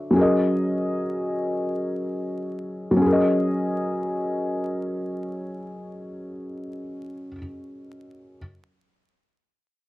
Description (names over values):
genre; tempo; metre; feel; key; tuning
hip hop; free time; none; none; F# major; A4 = 440 Hz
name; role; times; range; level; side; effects
felt-muted upright piano; solo; 0.0-8.4 s; F#3 to E5; -23 LUFS; equal; low-pass filter, cassette tape
room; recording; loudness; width
wet studio reverb, RT60 0.5 s; home recording on cassette, vinyl crackle; -22 LUFS; side -17 dB against mid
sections
0.0-3.0 A section; 3.0-5.9 B section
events
none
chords
0.2 F#6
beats
free time